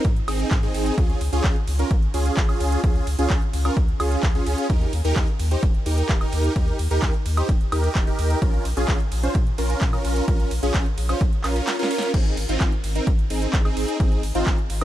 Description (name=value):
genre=EDM, festival progressive house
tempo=129 BPM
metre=4/4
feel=straight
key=Ab major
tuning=A4 = 443 Hz
part: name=supersaw chords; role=riff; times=0.0-14.8 s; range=C4 to C5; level=-25 LUFS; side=right 1 dB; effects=sidechain pumping, ping-pong delay
part: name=saturated sub bass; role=bass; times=0.0-14.8 s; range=Eb1 to Bb2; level=-24 LUFS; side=equal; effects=sidechain pumping
part: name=big-room dance drum kit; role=drums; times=0.0-14.8 s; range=crash cymbal, handclaps, hi-hat, ride cymbal, snare drum, woodblock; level=-31 LUFS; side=right 1 dB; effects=none
part: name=electronic kick drum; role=drums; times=0.0-14.6 s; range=none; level=-21 LUFS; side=equal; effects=none
room=little or no reverb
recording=dark, warm production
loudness=-19 LUFS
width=side -13 dB against mid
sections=0.0-12.1 A section; 12.1-14.8 A section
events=drop 0.0-12.1, 12.1-14.8; drum fill 11.7-12.1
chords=0.0 Ab; 1.0 Db; 4.7 Eb; 8.4 Bbm; 12.1 Ab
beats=0.05 0.51 | 0.98 1.44 1.91 2.37 | 2.84 3.30 3.77 4.23 | 4.70 5.16 5.63 6.09 | 6.56 7.02 7.49 7.95 | 8.42 8.88 9.35 9.81 | 10.28 10.74 11.21 11.68 | 12.14 12.61 13.07 13.54 | 14.00 14.47